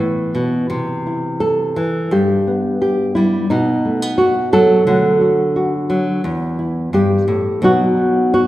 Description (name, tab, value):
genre	folk, solo fingerstyle acoustic guitar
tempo	87 BPM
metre	4/4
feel	rubato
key	E minor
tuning	A4 = 439 Hz
part	nylon-string guitar	solo	0.0-8.5 s	E2 to A4	-14 LUFS	equal	none
room	wet recital hall reverb, RT60 1.4 s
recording	recorded in a church or concert hall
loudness	-14 LUFS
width	side -15 dB against mid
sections	0.7-8.5 A section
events	none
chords	0.0 E5; 0.7 C; 2.1 G; 3.5 B; 4.9 D; 6.2 Em; 7.6 B